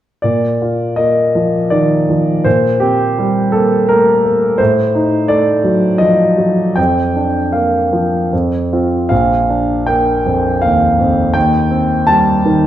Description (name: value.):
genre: classical, romantic character piece for solo piano.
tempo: 75-85 BPM.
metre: 3/4.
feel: rubato.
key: Bb major.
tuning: A4 = 440 Hz.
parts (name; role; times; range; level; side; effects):
clear concert grand piano; solo; 0.2-12.7 s; Bb1 to A5; -11 LUFS; equal; none.
room: wet recital hall reverb, RT60 1.3 s.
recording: dark, warm production.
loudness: -11 LUFS.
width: side -12 dB against mid.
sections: 0.2-12.7 A section.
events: none.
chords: 0.2 Bb; 2.5 C5/Bb; 4.6 Adim7; 6.8 Bb/F; 8.3 F5; 9.1 Bb; 11.4 Cm/Eb.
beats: | 0.24 0.99 1.72 | 2.46 3.17 3.88 | 4.59 5.31 6.02 | 6.78 7.54 8.32 | 9.11 9.87 10.62 | 11.35 12.08.